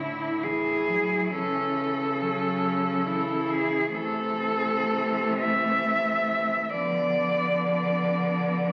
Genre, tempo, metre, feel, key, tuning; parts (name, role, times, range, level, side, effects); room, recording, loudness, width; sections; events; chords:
classical, lyrical piece for cello ensemble; 57-69 BPM; 3/4; rubato; A major, A minor from 3.9 s; A4 = 438 Hz
clear cello; melody; 0.0-8.7 s; E4 to E5; -28 LUFS; equal
rich cello; second line; 0.0-8.7 s; A3 to E4; -34 LUFS; equal
rich cello; accompaniment; 0.0-8.7 s; D3 to F#3; -35 LUFS; equal
rich cello; bass; 0.0-8.7 s; A2 to D3; -35 LUFS; equal
wet recital hall reverb, RT60 1.7 s; very old 78 rpm record, vinyl crackle; -26 LUFS; mono
0.0-8.7 A section
0.0 A5; 1.3 A/C#; 3.9 Am/C; 6.7 Bdim/D